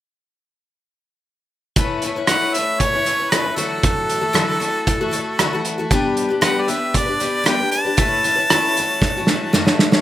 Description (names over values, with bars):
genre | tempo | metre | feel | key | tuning
folk rock and heartland rock | 116 BPM | 4/4 | straight | A mixolydian | A4 = 440 Hz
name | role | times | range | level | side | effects
picked twelve-string acoustic guitar | accompaniment | 1.8-10.0 s | F#2 to B4 | -21 LUFS | left 3 dB | slapback echo
loose indie drum kit | drums | 1.8-10.0 s | hi-hat, kick drum, rim click, snare drum | -19 LUFS | right 1 dB | none
bright harmonica | melody | 2.3-9.7 s | A4 to A5 | -20 LUFS | equal | slapback echo
room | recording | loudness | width
little or no reverb | none | -16 LUFS | side -13 dB against mid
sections
1.8-10.0 A section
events
drum fill 9.0-10.0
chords
1.8 Aadd9; 3.6 Dadd9; 5.9 G; 8.0 Aadd9; 8.8 F#m7